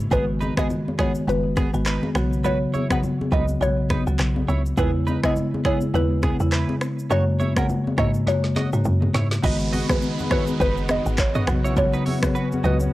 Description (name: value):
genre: afrobeats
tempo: 103 BPM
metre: 4/4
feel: swing 58% on 16ths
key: B major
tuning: A4 = 440 Hz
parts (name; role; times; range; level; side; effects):
- woody log drum bass; bass; 0.0-12.9 s; F#1 to G#2; -24 LUFS; equal; none
- deep house drum kit; drums; 0.0-12.9 s; crash cymbal, finger snaps, handclaps, hi-hat, kick drum, rim click, shaker, snare drum, toms; -25 LUFS; equal; none
- mallet-like synth pluck; melody; 0.1-12.8 s; B4 to F#5; -27 LUFS; equal; chorus, phaser
- marimba with medium mallets; accompaniment; 0.1-12.9 s; C#3 to F#4; -24 LUFS; left 1 dB; none
- direct-recorded clean electric guitar; riff; 0.1-12.8 s; B3 to D#5; -32 LUFS; right 5 dB; analog chorus
- congas; percussion; 0.1-12.9 s; none; -30 LUFS; left 1 dB; none
- lush unison pad; sustained chords; 9.4-12.9 s; G#3 to B4; -33 LUFS; equal; chorus
- downlifter; sound effects; 9.4-12.9 s; none; -36 LUFS; right 5 dB; none
room: little or no reverb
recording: dry, gritty hardware recording, transformer saturation, cassette tape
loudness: -19 LUFS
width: side -16 dB against mid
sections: 0.0-9.4 A section; 9.4-12.9 B section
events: drum fill 8.3-9.4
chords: 0.1 G#m7; 2.2 Bsus2; 4.8 E6; 7.1 F#add9; 9.4 G#m7; 11.5 Bsus2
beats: | 0.12 0.70 1.28 1.86 | 2.44 3.03 3.61 4.19 | 4.78 5.36 5.94 6.52 | 7.11 7.69 8.27 8.85 | 9.44 10.02 10.60 11.18 | 11.77 12.35